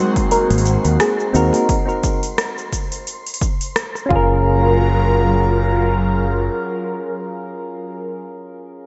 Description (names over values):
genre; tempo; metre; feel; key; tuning
sunset chillout; 87 BPM; 4/4; swing 56% on 16ths; Gb lydian; A4 = 439 Hz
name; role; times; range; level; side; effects
soft electric-piano-like synth keys; accompaniment; 0.0-8.9 s; C4 to Bb4; -24 LUFS; equal; chorus, delay
airy breathy pad; sustained chords; 0.0-8.0 s; Gb3 to Bb4; -25 LUFS; equal; chorus, phaser
wind-like tuned noise texture; texture; 0.0-4.5 s; C5 to C6; -39 LUFS; equal; built-in reverb, subtle chorus
electronic kick drum; drums; 0.2-4.3 s; none; -23 LUFS; equal; none
smooth R&B drum kit; drums; 0.2-4.1 s; hi-hat, rim click, shaker; -26 LUFS; equal; none
soft round pluck; arpeggios; 0.3-4.8 s; F4 to Bb4; -24 LUFS; equal; chorus, delay
fretless electric bass; bass; 0.5-6.5 s; Gb1 to Eb2; -19 LUFS; equal; none
congas; percussion; 0.5-1.7 s; none; -29 LUFS; equal; none
room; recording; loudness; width
moderate plate reverb, RT60 2.3 s; dreamy mix soaked in reverb, nothing above 7.9 kHz; -18 LUFS; mono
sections
0.0-4.5 A section; 4.5-7.2 B section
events
none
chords
0.0 Ab9; 1.7 N.C.; 4.1 Gbmaj7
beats
0.31 1.00 | 1.69 2.38 3.07 3.76 | 4.45 5.14 5.83 6.52